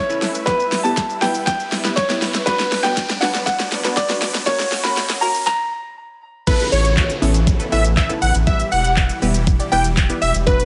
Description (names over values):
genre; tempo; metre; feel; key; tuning
dance-pop; 120 BPM; 4/4; straight; unclear; A4 = 440 Hz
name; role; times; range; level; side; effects
clear grand piano; melody; 0.0-5.9 s; B4 to B5; -23 LUFS; equal; delay
supersaw chords; sustained chords; 0.0-10.7 s; B2 to E5; -31 LUFS; equal; sidechain pumping
riser and downlifter; sound effects; 0.4-10.5 s; none; -33 LUFS; equal; none
punchy chord stab; accompaniment; 0.1-10.7 s; F#3 to D5; -27 LUFS; equal; chorus, sidechain pumping
pop drum kit; drums; 0.1-10.7 s; crash cymbal, handclaps, hi-hat, kick drum, shaker, snare drum; -23 LUFS; equal; none
plucky unison lead; melody; 6.5-10.7 s; B4 to G5; -23 LUFS; equal; sidechain pumping, delay
saturated sub bass; bass; 6.7-10.6 s; E1 to A1; -21 LUFS; equal; sidechain pumping
room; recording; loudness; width
light reverb; high-pass filter, nothing above 11.0 kHz; -18 LUFS; mono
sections
0.0-6.5 A section; 6.5-10.7 B section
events
build-up 0.0-6.5; drum fill 0.0-5.5; filter sweep 0.0-6.5; riser 0.4-6.5; stop 5.5-6.5; drop 6.5-10.7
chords
0.5 Em; 2.5 Bm; 4.5 F#; 6.5 Aadd9; 8.5 Em